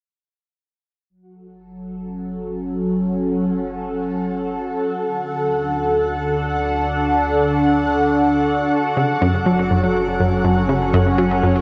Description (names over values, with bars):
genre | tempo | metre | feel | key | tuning
ambient, sequencer-driven space music | 122 BPM | 4/4 | straight | F# minor | A4 = 436 Hz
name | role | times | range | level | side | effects
phased analog pad | sustained chords | 1.8-11.6 s | D3 to F#5 | -21 LUFS | equal | phaser, chorus, shimmer reverb
round analog bass | bass | 1.1-11.6 s | F#1 to D2 | -35 LUFS | equal | none
bubbling stepped-filter texture | texture | 1.1-11.6 s | F#4 to F#5 | -31 LUFS | equal | chorus, built-in reverb, shimmer reverb
analog pluck | riff | 9.0-11.5 s | F#2 to F#3 | -20 LUFS | equal | chorus, delay, shimmer reverb
room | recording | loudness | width
wet huge ambient reverb, RT60 7.9 s | none | -19 LUFS | mono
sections
1.1-11.6 A section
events
fade-in on analog synth bass 1.1-11.6; fade-in on synth texture 1.1-11.6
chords
1.1 F#m; 5.0 D; 9.0 F#m